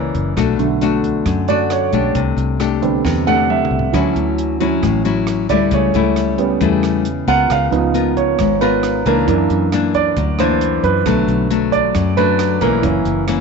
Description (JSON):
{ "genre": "bossa nova", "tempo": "135 BPM", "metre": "4/4", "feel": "straight", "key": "unclear", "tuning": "A4 = 440 Hz", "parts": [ { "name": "nylon-string guitar", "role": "accompaniment", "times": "0.0-13.4 s", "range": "F#2 to Bb4", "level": "-18 LUFS", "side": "left 12 dB", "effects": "none" }, { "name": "warm baby grand piano", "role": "accompaniment", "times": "0.0-13.4 s", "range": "D3 to F#5", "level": "-18 LUFS", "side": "right 13 dB", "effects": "none" }, { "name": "fingered electric bass", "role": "bass", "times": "0.0-13.4 s", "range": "F#1 to F#2", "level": "-21 LUFS", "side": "equal", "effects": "none" }, { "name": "compact cocktail drum kit", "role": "drums", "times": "0.1-13.4 s", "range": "hi-hat, kick drum, rim click, snare drum, toms", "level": "-28 LUFS", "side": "right 3 dB", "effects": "none" } ], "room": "light reverb, studio reverb", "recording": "1960s-style stereo with parts hard left and right, nothing above 7.8 kHz", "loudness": "-14 LUFS", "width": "side -5 dB against mid", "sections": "0.0-13.4 A section", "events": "grand piano solo 0.0-13.4; drum fill 3.0-3.9", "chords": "0.4 Bm7; 2.2 Am11/C; 3.9 Dmaj9; 5.7 A7/C#; 7.5 C#13; 9.3 F#aug7; 11.1 Bm7; 12.8 F#7", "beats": "| 0.37 0.81 1.26 1.71 | 2.15 2.60 3.05 3.49 | 3.94 4.38 4.83 5.27 | 5.72 6.16 6.61 7.05 | 7.50 7.94 8.39 8.83 | 9.28 9.72 10.17 10.61 | 11.06 11.50 11.95 12.39 | 12.84 13.28" }